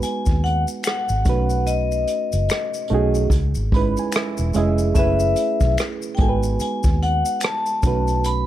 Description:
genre	R&B, neo-soul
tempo	73 BPM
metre	4/4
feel	swing 60% on 16ths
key	unclear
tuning	A4 = 440 Hz
part	vibraphone with hard mallets	melody	0.0-8.5 s	D#5 to B5	-23 LUFS	left 4 dB	slapback echo
part	reed electric piano	accompaniment	0.0-8.5 s	G#3 to B5	-24 LUFS	right 5 dB	spring reverb
part	vintage muted fingered electric bass	bass	0.0-8.5 s	E1 to D#2	-21 LUFS	equal	none
part	vintage brush drum kit	drums	0.0-8.5 s	hi-hat, kick drum, rim click	-22 LUFS	equal	none
part	maracas and finger snaps	percussion	0.0-8.5 s	none	-34 LUFS	left 6 dB	none
room	small room ambience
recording	none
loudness	-18 LUFS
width	side -12 dB against mid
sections	0.0-8.5 A section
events	reed electric piano fill 3.3-5.0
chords	0.0 G#m7; 1.3 B9; 3.3 C#m9; 5.0 F#m11; 6.2 G#m7; 7.8 B9

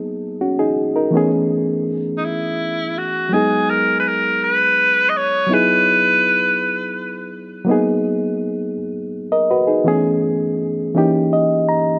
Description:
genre	R&B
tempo	55 BPM (dotted quarters)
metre	6/8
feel	straight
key	G# minor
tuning	A4 = 443 Hz
part	barky reed electric piano	accompaniment	0.0-12.0 s	E3 to A#5	-20 LUFS	equal	overdrive
part	clear tenor saxophone	melody	2.2-7.3 s	D#4 to D#5	-18 LUFS	equal	none
room	moderate plate reverb, RT60 3.0 s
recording	none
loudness	-18 LUFS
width	mono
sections	0.0-12.0 A section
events	reed electric piano fill 11.0-12.0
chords	0.0 G#m9; 1.1 Amaj9; 3.3 G#m7; 5.5 Emaj9; 7.7 G#m9; 9.9 Amaj9; 11.0 D#7b9

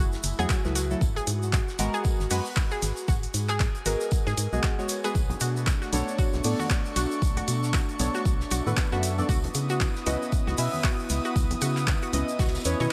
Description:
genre	deep house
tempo	116 BPM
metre	4/4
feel	swing 58% on 16ths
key	unclear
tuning	A4 = 440 Hz
part	airy breathy pad	sustained chords	0.0-12.9 s	A3 to D#6	-37 LUFS	equal	chorus, vintage 12-bit sampler grit, sidechain pumping
part	analog pluck	arpeggios	0.0-12.9 s	F#4 to C#5	-37 LUFS	equal	chorus, sidechain pumping, analog delay
part	deep mellow chord stab	stabs	0.0-12.9 s	F#3 to E5	-34 LUFS	equal	chorus, phaser, sidechain pumping, delay
part	organ-like FM bass	bass	0.0-12.9 s	F#1 to C#3	-31 LUFS	equal	sidechain pumping
part	damped 70s drum kit	drums	0.1-12.9 s	hi-hat, snare drum, tambourine	-44 LUFS	equal	none
part	egg shaker	percussion	0.1-12.9 s	none	-41 LUFS	equal	none
part	deep house drum kit	drums	0.2-12.8 s	handclaps, hi-hat	-34 LUFS	equal	none
part	electronic kick drum	drums	0.5-12.5 s	none	-28 LUFS	equal	none
part	congas	percussion	5.3-12.9 s	none	-41 LUFS	equal	none
room	light reverb, studio reverb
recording	none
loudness	-26 LUFS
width	mono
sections	0.0-12.9 A section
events	none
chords	0.0 F#m9; 1.0 G#m9; 5.2 Bm9; 9.3 C#m9

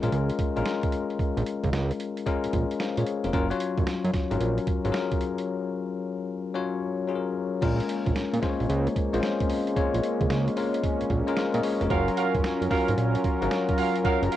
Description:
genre	R&B, new jack swing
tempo	112 BPM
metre	4/4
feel	swing 66% on 16ths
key	Bb minor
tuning	A4 = 440 Hz
part	bell-like tine electric piano	accompaniment	0.0-14.4 s	Gb3 to F5	-27 LUFS	left 5 dB	medium stereo tremolo
part	fat analog bass	bass	0.0-14.3 s	F1 to Bb2	-26 LUFS	right 2 dB	none
part	boom bap sampler-style drum kit	drums	0.0-14.4 s	crash cymbal, hi-hat, kick drum, snare drum	-30 LUFS	right 2 dB	cassette tape
part	brassy analog pad	sustained chords	7.6-14.4 s	Gb3 to Bb4	-30 LUFS	right 2 dB	chorus, tremolo
part	warm horn section	stabs	11.9-14.4 s	Gb4 to F5	-29 LUFS	right 9 dB	none
room	light reverb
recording	home recording on cassette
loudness	-24 LUFS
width	side -12 dB against mid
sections	0.0-7.6 A section; 7.6-14.4 B section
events	break 5.5-7.6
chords	0.0 Bbm7; 3.3 Gbmaj7; 7.6 Bbm7; 11.9 Gbmaj7

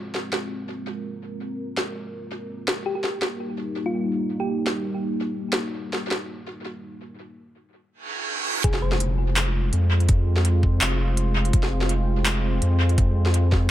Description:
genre	half-time drum and bass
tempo	166 BPM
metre	4/4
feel	half-time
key	F minor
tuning	A4 = 440 Hz
part	dark analog pad	sustained chords	0.0-13.7 s	G3 to C5	-29 LUFS	equal	chorus, vintage 12-bit sampler grit, sidechain pumping
part	industrial drum kit	drums	0.1-6.2, 8.6-13.6 s	handclaps, hi-hat, snare drum	-27 LUFS	equal	tape echo
part	thumb-piano-like synth pluck	melody	2.9-4.8, 8.6-9.2 s	F4 to C5	-32 LUFS	equal	chorus, tape echo
part	reverse cymbal and impact	sound effects	8.0-10.1 s	none	-29 LUFS	right 3 dB	none
part	saturated sub bass	bass	8.6-13.7 s	F1 to F2	-21 LUFS	equal	none
part	electronic kick drum	drums	8.6-13.6 s	none	-21 LUFS	equal	none
room	light reverb, digital ambience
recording	echo-heavy mix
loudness	-21 LUFS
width	side -13 dB against mid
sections	0.0-8.6 A section; 8.6-13.7 B section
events	filter sweep on analog synth pad 0.0-8.6; reverse cymbal 8.0-8.6; drop 8.6-13.7; impact 8.6-10.1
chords	0.0 Fm; 2.9 Eb; 8.6 Fm

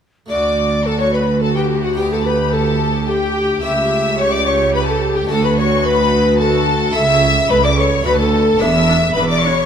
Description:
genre	classical, baroque-style concerto movement with solo episodes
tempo	108 BPM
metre	3/4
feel	straight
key	D major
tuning	A4 = 440 Hz
part	mellow hollow tenor recorder	melody	0.3-9.7 s	F#4 to E5	-18 LUFS	left 1 dB	none
part	rich chamber violin section	melody	0.3-9.7 s	F#5 to E6	-21 LUFS	left 5 dB	none
part	rich chamber violin section	second line	0.3-9.7 s	F#4 to E5	-23 LUFS	left 1 dB	none
part	harpsichord	accompaniment	0.3-9.7 s	C#2 to A4	-26 LUFS	right 2 dB	none
part	rich studio viola section	accompaniment	0.3-9.5 s	D4 to A4	-24 LUFS	left 1 dB	none
part	rich chamber cello section	bass	0.3-9.6 s	C#2 to E2	-20 LUFS	right 2 dB	none
part	warm chamber double bass section	bass	0.3-9.6 s	E1 to D2	-22 LUFS	right 5 dB	none
room	wet recital hall reverb, RT60 1.4 s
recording	minimal, uncompressed stereo recording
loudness	-13 LUFS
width	side -8 dB against mid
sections	0.3-9.7 A section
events	none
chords	0.3 D; 2.0 G/D; 3.6 A7/C#; 5.3 D; 7.0 A/C#; 8.1 D; 8.6 E7

